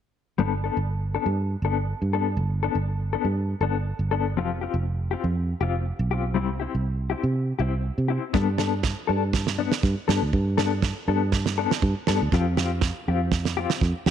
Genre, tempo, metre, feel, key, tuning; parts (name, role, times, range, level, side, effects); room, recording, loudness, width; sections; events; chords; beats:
highlife guitar band; 121 BPM; 4/4; swing 54% on 16ths; G mixolydian; A4 = 440 Hz
mellow electric guitar; accompaniment; 0.4-14.1 s; F3 to A4; -27 LUFS; left 10 dB; tremolo
fingered electric bass; bass; 0.4-14.1 s; F1 to C3; -25 LUFS; right 1 dB
damped 70s drum kit; drums; 8.3-14.1 s; kick drum, snare drum; -26 LUFS; right 5 dB
light reverb, small room ambience; 1960s-style stereo; -22 LUFS; side -9 dB against mid
0.4-8.3 A section; 8.3-14.1 B section
0.4 Gadd9; 4.4 Fsus2; 6.4 C; 8.3 Gadd9; 12.3 Fsus2
| 0.39 0.88 1.38 1.88 | 2.38 2.87 3.37 3.87 | 4.36 4.86 5.36 5.85 | 6.35 6.85 7.34 7.84 | 8.34 8.84 9.33 9.83 | 10.33 10.82 11.32 11.82 | 12.32 12.81 13.31 13.81